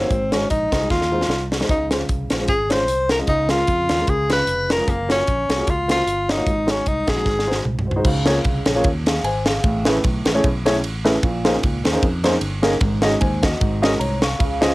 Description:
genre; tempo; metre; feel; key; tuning
uptempo gospel; 151 BPM; 4/4; swing 55% on 8ths; Db major; A4 = 440 Hz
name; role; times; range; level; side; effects
breathy tenor saxophone; melody; 0.0-7.7 s; Bb3 to C5; -20 LUFS; left 1 dB; none
warm concert grand piano; accompaniment; 0.0-14.7 s; Ab2 to Db6; -22 LUFS; equal; none
fingered electric bass; bass; 0.0-14.7 s; F1 to F2; -26 LUFS; equal; none
crisp fusion drum kit; drums; 0.1-14.7 s; crash cymbal, hi-hat, kick drum, ride cymbal, snare drum, toms; -21 LUFS; equal; cassette tape
room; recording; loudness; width
light reverb; home recording on cassette; -17 LUFS; side -20 dB against mid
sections
0.0-8.1 A section; 8.1-14.7 B section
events
drum fill 0.9-1.7, 7.3-8.1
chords
0.1 Ab7; 1.7 Dbmaj7; 3.3 Bbm7/Db; 4.1 Db7; 4.9 Gbmaj7; 6.5 Ab7sus4; 7.3 Ab7; 8.1 Db6; 9.6 Amaj9; 11.2 Bbm11; 12.8 Ab7(no3); 13.6 Ab9sus4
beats
| 0.10 0.50 0.90 1.29 | 1.69 2.09 2.48 2.88 | 3.28 3.68 4.07 4.47 | 4.87 5.27 5.67 6.06 | 6.46 6.86 7.26 7.66 | 8.05 8.45 8.85 9.24 | 9.64 10.04 10.43 10.83 | 11.23 11.62 12.02 12.42 | 12.81 13.21 13.61 14.00 | 14.40

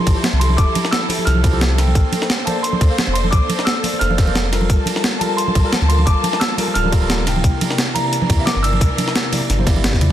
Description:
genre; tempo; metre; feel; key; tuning
liquid drum and bass; 175 BPM; 4/4; swing 54% on 16ths; F major; A4 = 440 Hz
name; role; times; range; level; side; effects
dark baby grand piano; melody; 0.0-9.8 s; A5 to F6; -24 LUFS; right 1 dB; tape echo
tine electric piano; accompaniment; 0.0-10.1 s; C3 to G5; -24 LUFS; equal; medium tremolo, dub echo
warm symphonic string section; sustained chords; 0.0-10.1 s; E3 to A5; -26 LUFS; left 2 dB; none
warm sub bass; bass; 0.1-10.1 s; D1 to E2; -18 LUFS; equal; none
breakbeat sampler-style drum kit; drums; 0.1-10.1 s; hi-hat, ride cymbal, snare drum, toms; -21 LUFS; equal; none
electronic kick drum; drums; 0.1-10.0 s; none; -16 LUFS; equal; overdrive
congas; percussion; 0.2-10.1 s; none; -25 LUFS; right 2 dB; none
room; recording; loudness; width
light reverb, digital ambience; dense, heavily limited modern master; -14 LUFS; side -11 dB against mid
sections
0.0-10.1 A section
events
drum fill 9.9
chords
0.0 Fmaj9; 2.0 Bbmaj9; 4.7 Gm9; 7.4 C9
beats
0.24 | 0.58 0.92 1.27 1.61 | 1.95 2.30 2.64 2.98 | 3.32 3.67 4.01 4.35 | 4.70 5.04 5.38 5.72 | 6.07 6.41 6.75 7.10 | 7.44 7.78 8.12 8.47 | 8.81 9.15 9.50 9.84

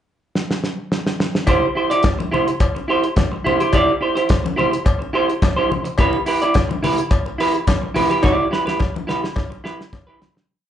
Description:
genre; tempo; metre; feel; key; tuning
disco; 106 BPM; 4/4; straight; unclear; A4 = 440 Hz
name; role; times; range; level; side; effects
damped 70s drum kit; drums; 0.4-10.5 s; hi-hat, kick drum, snare drum; -19 LUFS; equal; none
semi-hollow electric guitar; accompaniment; 1.5-10.4 s; E4 to D5; -18 LUFS; right 2 dB; slapback echo
congas; percussion; 1.5-10.4 s; none; -27 LUFS; left 5 dB; slapback echo
cowbell; percussion; 1.5-10.1 s; none; -27 LUFS; left 4 dB; slapback echo
room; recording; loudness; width
moderate club reverb, RT60 0.5 s; live gig heard through the venue's PA, club reverb, nothing above 10.6 kHz; -16 LUFS; side -10 dB against mid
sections
0.0-1.5 pickup bar; 1.5-10.5 breakdown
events
drum fill 0.3-1.5, 8.2-10.5; fade-out 8.2-10.5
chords
0.0 N.C.; 1.5 C/E; 6.0 G6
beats
0.34 0.91 | 1.47 2.04 2.60 3.17 | 3.73 4.29 4.86 5.42 | 5.99 6.55 7.11 7.68 | 8.24 8.80 9.37 9.93

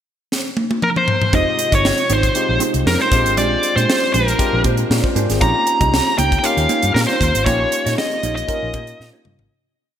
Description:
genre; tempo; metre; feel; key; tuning
polished 1980s jazz-funk pop; 117 BPM; 4/4; swing 54% on 16ths; unclear; A4 = 440 Hz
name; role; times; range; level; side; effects
crisp fusion drum kit; drums; 0.3-9.5 s; hi-hat, kick drum, snare drum, toms; -20 LUFS; equal; gated reverb
nasal lead guitar with a parked wah; melody; 0.8-9.1 s; Bb4 to Bb5; -18 LUFS; equal; overdrive
barky tine electric piano; accompaniment; 1.3-9.5 s; C3 to D5; -23 LUFS; left 2 dB; overdrive, wide subtle chorus
mellow electric guitar; riff; 1.3-9.4 s; Ab3 to Eb5; -26 LUFS; right 5 dB; lush chorus
vintage muted fingered electric bass; bass; 1.3-9.5 s; F1 to Bb2; -20 LUFS; equal; none
room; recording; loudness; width
moderate lush hall reverb, RT60 2.1 s; bright 1980s-style digital production; -14 LUFS; side -9 dB against mid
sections
0.0-1.3 pickup bar; 1.3-9.5 verse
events
drum fill 0.3-1.3, 9.0-9.5; fade-out 7.5-9.5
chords
0.0 N.C.; 1.3 Fm7; 3.1 Bb13; 5.4 Eb7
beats
0.31 0.82 | 1.33 1.84 2.35 2.86 | 3.37 3.88 4.39 4.90 | 5.41 5.92 6.43 6.95 | 7.46 7.97 8.48 8.99

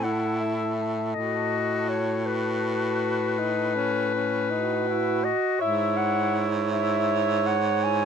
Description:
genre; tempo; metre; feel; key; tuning
classical, lyrical piece for single-reed quartet; 54 BPM (dotted quarters); 12/8; rubato; unclear; A4 = 442 Hz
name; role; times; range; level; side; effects
mellow clarinet; melody; 0.0-8.1 s; B4 to G#5; -27 LUFS; left 7 dB; none
mellow alto saxophone; second line; 0.0-8.1 s; F#4 to C#5; -29 LUFS; right 11 dB; none
clear tenor saxophone; accompaniment; 0.0-8.1 s; C#4 to F#4; -30 LUFS; left 2 dB; none
bright baritone saxophone; bass; 0.0-8.1 s; G#2 to A2; -29 LUFS; right 3 dB; none
room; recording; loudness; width
little or no reverb; close, detailed microphones; -23 LUFS; side -7 dB against mid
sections
0.0-8.1 A section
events
none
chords
0.0 A5; 1.2 B7/A; 5.6 E/G#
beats
0.05 | 1.16 2.27 3.39 4.52 | 5.61 6.73 7.85

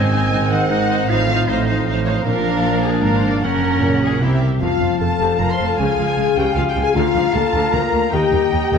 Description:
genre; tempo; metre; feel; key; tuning
cinematic, heroic adventure film score; 154 BPM; 3/4; straight; Ab mixolydian, F mixolydian from 4.6 s; A4 = 440 Hz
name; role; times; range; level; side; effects
dark symphonic violin section; melody; 0.0-8.8 s; Eb5 to C6; -27 LUFS; left 3 dB; none
bright clarinet; second line; 0.0-8.8 s; C4 to F5; -24 LUFS; left 1 dB; none
dark symphonic violin section; second line; 0.0-8.8 s; G4 to C6; -24 LUFS; equal; none
rich symphonic viola section; accompaniment; 0.0-8.8 s; C3 to C5; -26 LUFS; right 2 dB; none
dark trombone section; sustained chords; 0.0-4.4 s; Ab2 to G3; -25 LUFS; right 4 dB; none
mellow French horn section; sustained chords; 0.0-8.8 s; Bb3 to C5; -22 LUFS; left 6 dB; none
concert harp; arpeggios; 0.0-8.8 s; Gb2 to Bb4; -26 LUFS; left 8 dB; none
rich symphonic cello section; bass; 0.0-8.8 s; Db2 to C3; -24 LUFS; right 3 dB; none
warm symphonic double bass section; bass; 0.0-8.8 s; F1 to Eb2; -23 LUFS; right 4 dB; none
silver concert flute; second line; 4.6-8.8 s; Ab5 to Bb5; -27 LUFS; left 2 dB; none
room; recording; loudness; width
moderate scoring stage reverb, RT60 1.6 s; none; -15 LUFS; side -6 dB against mid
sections
0.0-4.6 A section; 4.6-8.8 B section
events
none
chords
0.0 Ab; 1.1 F7/A; 2.3 Bb; 3.4 Gb; 4.2 C7; 4.6 F; 5.8 Db; 7.0 Bb/D; 8.1 Eb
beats
0.31 0.70 | 1.09 1.48 1.87 | 2.26 2.65 3.04 | 3.43 3.82 4.22 | 4.62 5.01 5.40 | 5.79 6.18 6.57 | 6.96 7.35 7.74 | 8.13 8.53

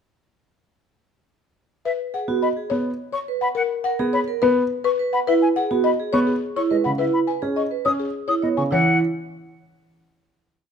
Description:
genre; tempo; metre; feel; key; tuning
classical, minimalist pattern music; 105 BPM; 3/4; straight; C# dorian; A4 = 442 Hz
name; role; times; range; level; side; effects
buzzing marimba with medium mallets; melody; 1.9-9.0 s; G#4 to G#5; -24 LUFS; left 8 dB; none
silver concert flute; arpeggios; 1.9-9.0 s; D#5 to D#6; -25 LUFS; left 2 dB; none
vibraphone with medium hard mallets; arpeggios; 2.1-9.0 s; E4 to C#5; -23 LUFS; right 7 dB; none
dark grand piano; accompaniment; 2.3-9.0 s; C#3 to C#4; -24 LUFS; right 1 dB; none
room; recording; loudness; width
light reverb; close, detailed microphones; -19 LUFS; side -7 dB against mid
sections
1.9-8.7 A section; 8.7-10.4 final chord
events
none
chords
1.9 C#7(no3); 3.6 B5; 5.3 C#m7; 7.0 E/C#; 8.7 N.C.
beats
| 1.85 2.42 3.00 | 3.57 4.14 4.71 | 5.28 5.85 6.42 | 7.00 7.57 8.14 | 8.71

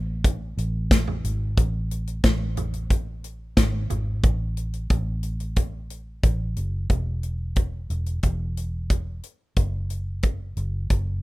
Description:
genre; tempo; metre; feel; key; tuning
piano-driven pop; 90 BPM; 4/4; straight; unclear; A4 = 445 Hz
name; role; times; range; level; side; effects
vintage muted fingered electric bass; bass; 0.0-11.2 s; E1 to A1; -27 LUFS; equal; none
modern studio drum kit; drums; 0.2-11.1 s; hi-hat, kick drum, snare drum, toms; -21 LUFS; equal; none
room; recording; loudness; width
little or no reverb; rough home demo mix; -23 LUFS; side -19 dB against mid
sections
0.0-1.6 A section; 1.6-6.9 B section; 6.9-11.2 C section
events
none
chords
none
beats
0.25 0.91 | 1.58 2.24 2.91 3.57 | 4.24 4.90 5.57 6.24 | 6.90 7.57 8.23 8.90 | 9.57 10.23 10.90

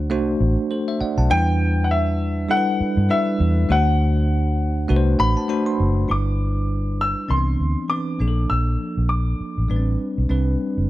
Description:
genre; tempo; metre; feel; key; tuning
lush 1970s-style soul; 100 BPM; 4/4; swing 58% on 16ths; G major; A4 = 445 Hz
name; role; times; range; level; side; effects
bell-like tine electric piano; accompaniment; 0.0-10.9 s; E3 to C6; -23 LUFS; equal; slow stereo tremolo
vintage muted fingered electric bass; bass; 0.0-10.9 s; F#1 to G2; -20 LUFS; equal; none
clear baby grand piano; melody; 1.3-10.0 s; E5 to E6; -25 LUFS; left 2 dB; none
room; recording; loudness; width
studio reverb; none; -18 LUFS; side -16 dB against mid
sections
0.0-6.1 A section; 6.1-10.9 B section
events
tine electric piano fill 4.9-6.1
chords
0.0 D7; 1.3 Em7; 3.7 D7; 6.1 G6; 7.3 Cmaj9; 8.2 Bbmaj7; 9.7 Am11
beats
0.10 0.70 | 1.30 1.90 2.50 3.10 | 3.70 4.30 4.90 5.50 | 6.10 6.70 7.30 7.90 | 8.50 9.10 9.70 10.30

